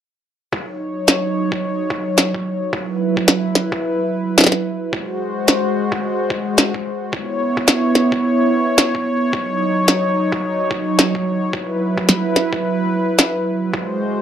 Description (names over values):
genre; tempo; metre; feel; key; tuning
glitch hop; 109 BPM; 4/4; swing 60% on 16ths; Eb phrygian; A4 = 440 Hz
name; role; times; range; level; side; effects
warm analog pad; sustained chords; 0.5-14.2 s; Gb3 to Db5; -18 LUFS; right 1 dB; chorus, sidechain pumping
electronic kick drum; drums; 0.5-13.9 s; none; -26 LUFS; equal; high-pass filter on kick, high-pass filter on room
electronic snare drum; drums; 1.1-13.3 s; none; -13 LUFS; equal; overdrive
room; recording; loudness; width
wet small room reverb, RT60 0.6 s; dark, warm production, lossy compression artefacts; -16 LUFS; side -9 dB against mid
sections
0.5-14.2 A section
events
none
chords
0.5 Ebm7; 2.7 Gb7sus4; 4.9 Ab7; 7.1 Dbm7; 9.3 Ebm7; 11.5 Gb7sus4